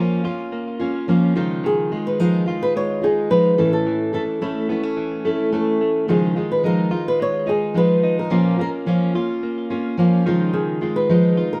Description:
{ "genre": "acoustic pop", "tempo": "108 BPM", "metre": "4/4", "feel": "straight", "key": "Db mixolydian", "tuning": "A4 = 440 Hz", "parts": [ { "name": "flamenco guitar", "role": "melody", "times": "0.0-11.6 s", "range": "E4 to Db5", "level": "-24 LUFS", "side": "equal", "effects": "none" }, { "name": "fingerpicked steel-string acoustic guitar", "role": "accompaniment", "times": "0.0-11.6 s", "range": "A2 to A4", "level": "-22 LUFS", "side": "equal", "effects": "none" }, { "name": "direct-recorded clean electric guitar", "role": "arpeggios", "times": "0.0-11.6 s", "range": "Eb3 to F4", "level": "-30 LUFS", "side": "equal", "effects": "tape echo" } ], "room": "moderate studio reverb, RT60 0.6 s", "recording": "band playing live in one room", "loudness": "-20 LUFS", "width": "mono", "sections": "0.0-11.6 A section", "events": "none", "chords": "0.0 Bbm; 1.4 Dbadd9; 3.6 A; 6.1 Dbadd9; 8.3 Bbm; 10.3 Dbadd9" }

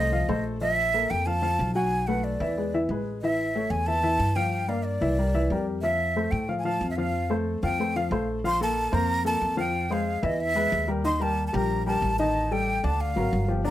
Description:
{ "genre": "Afro-Cuban jazz", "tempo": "184 BPM", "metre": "4/4", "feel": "straight", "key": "F major, Bb major from 8.4 s", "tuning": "A4 = 438 Hz", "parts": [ { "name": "breathy jazz flute", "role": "melody", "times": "0.0-13.7 s", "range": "D5 to C6", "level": "-27 LUFS", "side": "equal", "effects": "none" }, { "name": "warm baby grand piano", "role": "accompaniment", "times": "0.0-13.7 s", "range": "D3 to Gb5", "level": "-28 LUFS", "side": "left 2 dB", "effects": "none" }, { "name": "upright bass", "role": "bass", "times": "0.0-13.7 s", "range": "G1 to A2", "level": "-29 LUFS", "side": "equal", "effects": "none" } ], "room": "light reverb", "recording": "none", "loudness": "-23 LUFS", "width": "side -13 dB against mid", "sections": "0.0-8.4 A section; 8.4-13.7 B section", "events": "none", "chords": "0.0 F7; 0.6 Bb5; 1.9 Bm7; 2.6 E; 3.2 A; 4.5 Gm7; 5.2 C9; 5.8 Fmaj7; 7.8 Bbsus2; 9.7 Fm; 10.4 E; 11.0 Eb; 12.4 Ebmaj7#11/A; 13.0 Daug" }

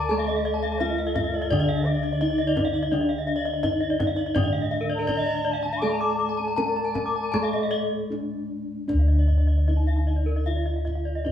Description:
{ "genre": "Balinese gamelan", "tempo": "76-85 BPM", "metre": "4/4", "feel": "straight", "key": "D pelog", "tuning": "A4 = 440 Hz", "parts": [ { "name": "gamelan-type bronze metallophone", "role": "melody", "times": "0.0-11.3 s", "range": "D4 to Bb4-40c", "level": "-29 LUFS", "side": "right 1 dB", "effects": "none" }, { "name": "bright reedy bansuri", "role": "second line", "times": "0.0-8.4 s", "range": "A4-47c to D6", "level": "-35 LUFS", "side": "equal", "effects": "none" }, { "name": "gamelan-type bronze metallophone", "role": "accompaniment", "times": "0.0-8.9 s", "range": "D3 to A3-45c", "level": "-32 LUFS", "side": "equal", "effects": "none" }, { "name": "gamelan-type bronze metallophone", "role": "arpeggios", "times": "0.0-11.3 s", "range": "D5 to D6", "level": "-29 LUFS", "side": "left 4 dB", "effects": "none" }, { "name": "gamelan-type bossed gongs", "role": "bass", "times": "0.0-11.3 s", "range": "D2 to A4-45c", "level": "-25 LUFS", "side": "equal", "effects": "none" }, { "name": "gamelan-type bronze metallophone", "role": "arpeggios", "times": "0.3-11.3 s", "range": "Bb4-40c to D6", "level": "-32 LUFS", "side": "right 1 dB", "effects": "none" }, { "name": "kendang", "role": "percussion", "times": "0.3-11.3 s", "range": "none", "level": "-30 LUFS", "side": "equal", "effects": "none" } ], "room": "moderate stone room reverb, RT60 1.1 s", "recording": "band playing live in one room, studio reverb", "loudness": "-22 LUFS", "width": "side -10 dB against mid", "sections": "0.0-8.9 A section; 8.9-11.3 B section", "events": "break 7.7-8.9", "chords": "none" }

